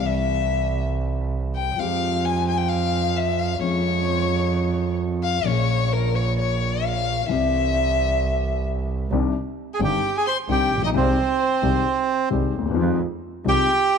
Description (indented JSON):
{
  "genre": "tango",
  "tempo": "131 BPM",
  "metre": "4/4",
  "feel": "rubato",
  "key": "C minor from 9.1 s",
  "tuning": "A4 = 441 Hz",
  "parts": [
    { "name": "warm violin", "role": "second line", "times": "0.0-14.0 s", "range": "Bb4 to C6", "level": "-25 LUFS", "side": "left 6 dB", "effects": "none" },
    { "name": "dark concert grand piano", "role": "accompaniment", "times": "0.0-13.7 s", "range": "G1 to Ab4", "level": "-26 LUFS", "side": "left 7 dB", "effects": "none" },
    { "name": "rich double bass", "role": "bass", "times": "0.0-13.6 s", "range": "G1 to F2", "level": "-24 LUFS", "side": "right 4 dB", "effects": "none" },
    { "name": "bandoneon", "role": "melody", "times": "9.7-14.0 s", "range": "C4 to C5", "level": "-22 LUFS", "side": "right 6 dB", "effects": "none" }
  ],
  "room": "moderate echo chamber reverb, RT60 2.5 s",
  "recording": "1960s-style stereo with parts hard left and right",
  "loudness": "-20 LUFS",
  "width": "side -6 dB against mid",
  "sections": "0.0-9.1 A section; 9.1-14.0 B section",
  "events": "violin solo 0.0-9.1",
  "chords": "0.0 C; 1.8 Fmadd9; 3.6 Db/F; 5.4 Bbm7; 7.3 C; 9.1 Cmadd9; 10.9 Abmaj7/C; 12.8 Fm7"
}